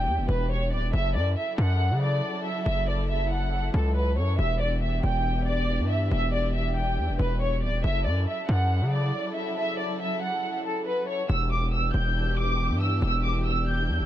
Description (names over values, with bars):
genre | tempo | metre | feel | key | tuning
hip hop, drill | 139 BPM | 4/4 | half-time | unclear | A4 = 440 Hz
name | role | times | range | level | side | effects
warm symphonic violin section | melody | 0.0-14.1 s | A4 to G6 | -29 LUFS | equal | low-pass filter, tape echo
dark studio string section | sustained chords | 0.0-14.1 s | C#3 to A4 | -33 LUFS | equal | none
distorted 808-style bass | bass | 0.0-14.1 s | D1 to C#3 | -25 LUFS | equal | distortion
room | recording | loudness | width
little or no reverb | nothing above 11.0 kHz | -24 LUFS | side -12 dB against mid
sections
0.0-11.3 A section; 11.3-14.1 B section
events
break 9.6-11.3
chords
0.0 Em7; 0.9 F#m7; 4.4 Em7; 7.8 F#m7; 11.3 Em7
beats
0.07 0.50 | 0.93 1.36 1.80 2.23 | 2.66 3.09 3.52 3.96 | 4.39 4.82 5.25 5.68 | 6.11 6.54 6.98 7.41 | 7.84 8.27 8.70 9.13 | 9.57 10.00 10.43 10.86 | 11.29 11.72 12.16 12.59 | 13.02 13.45 13.88